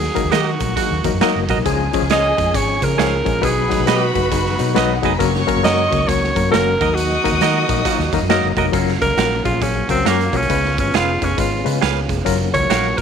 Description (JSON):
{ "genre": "uptempo 1960s-style soul", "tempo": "136 BPM", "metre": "4/4", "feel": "swing 63% on 8ths", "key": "F# major", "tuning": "A4 = 440 Hz", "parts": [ { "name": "edgy alto saxophone", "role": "melody", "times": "0.0-13.0 s", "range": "A#3 to D#5", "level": "-20 LUFS", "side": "right 1 dB", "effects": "none" }, { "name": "barky reed electric piano", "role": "accompaniment", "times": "0.0-13.0 s", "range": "E#3 to E#5", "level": "-21 LUFS", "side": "left 12 dB", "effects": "overdrive, fast tremolo" }, { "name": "percussive tonewheel organ", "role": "sustained chords", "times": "0.0-13.0 s", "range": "C#3 to G#4", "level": "-28 LUFS", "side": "right 1 dB", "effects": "fast rotary speaker, overdrive, chorus vibrato" }, { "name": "vintage muted fingered electric bass", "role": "bass", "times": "0.0-13.0 s", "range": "E#1 to D#3", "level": "-22 LUFS", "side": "equal", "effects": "none" }, { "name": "raw garage drum kit", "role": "drums", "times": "0.0-13.0 s", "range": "hi-hat, kick drum, snare drum", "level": "-22 LUFS", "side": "right 5 dB", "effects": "none" }, { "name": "clean electric guitar", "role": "stabs", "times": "0.3-12.9 s", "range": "C#4 to E#5", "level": "-23 LUFS", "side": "right 11 dB", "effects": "none" }, { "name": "warm horn section", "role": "second line", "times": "0.8-1.1, 7.9-8.2 s", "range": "A#3 to F#4", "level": "-25 LUFS", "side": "right 12 dB", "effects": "none" }, { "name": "warm studio string section", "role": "second line", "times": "1.7-8.5 s", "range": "F#4 to D#6", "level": "-24 LUFS", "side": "left 1 dB", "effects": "none" } ], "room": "moderate echo chamber reverb, RT60 1.5 s, studio reverb", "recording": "1960s-style stereo with parts hard left and right", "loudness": "-15 LUFS", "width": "side -7 dB against mid", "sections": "0.0-8.7 A section; 8.7-13.0 B section", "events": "band accent 0.0-1.7, 7.0-8.7; alto saxophone solo 8.7-13.0", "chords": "0.0 D#m; 1.7 C#; 3.4 B; 5.2 F#; 6.7 D#m; 8.7 F#maj7; 10.5 C#7; 12.3 F#maj7" }